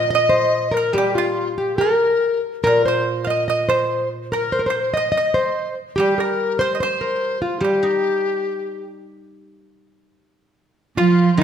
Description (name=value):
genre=chinese traditional, Chinese chamber ensemble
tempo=72 BPM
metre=2/4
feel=rubato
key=G jue mode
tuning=A4 = 441 Hz
part: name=nylon-string guitar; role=melody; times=0.0-11.4 s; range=Eb4 to Eb5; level=-21 LUFS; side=equal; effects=none
part: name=pipa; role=second line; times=0.0-11.4 s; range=F4 to F5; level=-24 LUFS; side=right 6 dB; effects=none
part: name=reedy large dizi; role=second line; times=0.0-11.4 s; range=Eb4 to Eb5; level=-23 LUFS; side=left 5 dB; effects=none
part: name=guzheng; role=accompaniment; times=0.0-11.4 s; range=Bb2 to Eb4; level=-26 LUFS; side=right 1 dB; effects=none
part: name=dark cello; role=second line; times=11.0-11.4 s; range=Eb3 to F3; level=-14 LUFS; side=right 5 dB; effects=none
room=wet recital hall reverb, RT60 1.5 s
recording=none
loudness=-17 LUFS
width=side -8 dB against mid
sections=0.0-9.3 A section; 9.3-11.4 B section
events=none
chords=none